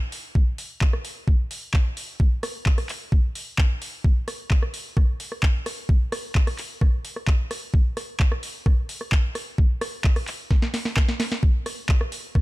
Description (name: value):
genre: house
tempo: 130 BPM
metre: 4/4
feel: straight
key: none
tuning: none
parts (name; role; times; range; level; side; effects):
- booming analog drum machine; drums; 0.1-12.4 s; handclaps, hi-hat, rim click, snare drum; -29 LUFS; equal; studio reverb
- electronic kick drum; drums; 0.4-12.4 s; none; -19 LUFS; equal; studio reverb
room: little or no reverb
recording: none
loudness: -21 LUFS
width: side -20 dB against mid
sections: 0.0-12.4 A section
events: drum fill 10.5-11.4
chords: none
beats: | 0.35 0.81 1.28 1.74 | 2.20 2.66 3.12 3.58 | 4.04 4.51 4.97 5.43 | 5.89 6.35 6.82 7.28 | 7.74 8.20 8.66 9.12 | 9.58 10.04 10.51 10.97 | 11.43 11.89 12.35